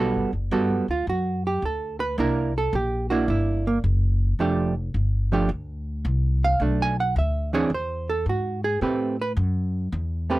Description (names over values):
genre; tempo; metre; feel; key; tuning
jazz, small-group swing and bop; 108 BPM; 4/4; swing 67% on 8ths; G major; A4 = 440 Hz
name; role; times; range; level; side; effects
hollow-body jazz guitar; accompaniment; 0.0-10.4 s; E3 to Ab5; -23 LUFS; right 3 dB; none
upright bass; bass; 0.0-10.4 s; F1 to A2; -25 LUFS; equal; none
room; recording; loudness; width
little or no reverb; dry, close 1970s-style studio recording; -22 LUFS; side -17 dB against mid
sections
0.0-10.4 A section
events
none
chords
0.0 Gmaj9; 2.2 C9; 4.4 F69; 6.6 Bm7; 7.7 E; 8.8 Am9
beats
0.52 1.07 1.63 | 2.18 2.73 3.29 3.84 | 4.39 4.95 5.50 6.05 | 6.61 7.16 7.71 8.27 | 8.82 9.37 9.93